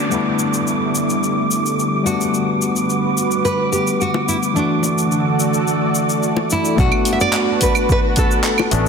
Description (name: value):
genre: sunset chillout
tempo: 108 BPM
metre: 4/4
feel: straight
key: unclear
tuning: A4 = 439 Hz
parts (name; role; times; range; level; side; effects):
- nylon-string guitar; melody; 0.0-8.9 s; D4 to E5; -22 LUFS; right 1 dB; ping-pong delay
- overdriven tine electric piano; accompaniment; 0.0-8.9 s; E3 to F#4; -20 LUFS; moving between left 7 dB and right 4 dB; auto-pan, low-pass filter, ping-pong delay
- lush unison pad; sustained chords; 0.0-8.9 s; D3 to A5; -22 LUFS; equal; chorus, phaser
- downlifter; sound effects; 0.0-2.3 s; none; -32 LUFS; right 1 dB; none
- wind-like tuned noise texture; texture; 0.0-6.8 s; D6; -25 LUFS; right 3 dB; built-in reverb
- deep house drum kit; drums; 0.1-8.9 s; claves, handclaps, hi-hat, shaker; -23 LUFS; left 1 dB; none
- bongos; percussion; 4.1-8.7 s; none; -24 LUFS; left 5 dB; none
- growling fingered electric bass; bass; 6.8-8.9 s; A1 to B1; -18 LUFS; right 1 dB; overdrive
- electronic kick drum; drums; 6.8-8.3 s; none; -18 LUFS; equal; none
room: moderate lush hall reverb, RT60 1.8 s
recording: dense, heavily limited modern master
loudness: -15 LUFS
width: side -6 dB against mid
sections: 0.0-6.8 A section; 6.8-8.9 B section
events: filter sweep on analog synth pad 0.0-6.8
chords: 0.1 A7sus4; 2.1 Gmaj7; 4.6 D; 6.8 Bm7